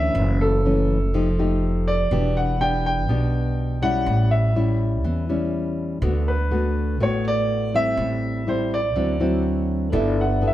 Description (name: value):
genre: bossa nova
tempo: 123 BPM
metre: 4/4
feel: straight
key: D major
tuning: A4 = 440 Hz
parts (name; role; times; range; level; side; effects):
- warm grand piano; melody; 0.0-10.5 s; A4 to G5; -25 LUFS; equal; none
- nylon-string guitar; accompaniment; 0.0-10.5 s; F#2 to A4; -24 LUFS; left 1 dB; none
- upright bass; bass; 0.0-10.5 s; E1 to E2; -23 LUFS; equal; none
- tine electric piano; accompaniment; 9.9-10.5 s; A4 to E5; -26 LUFS; right 2 dB; medium stereo tremolo
room: moderate stone room reverb, RT60 1.3 s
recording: band playing live in one room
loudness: -19 LUFS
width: side -14 dB against mid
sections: 0.0-9.9 A section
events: none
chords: 0.2 F#m7; 1.1 F9; 2.1 Em7; 4.1 A7; 6.0 D6; 8.0 Am7; 9.0 D9; 9.9 G69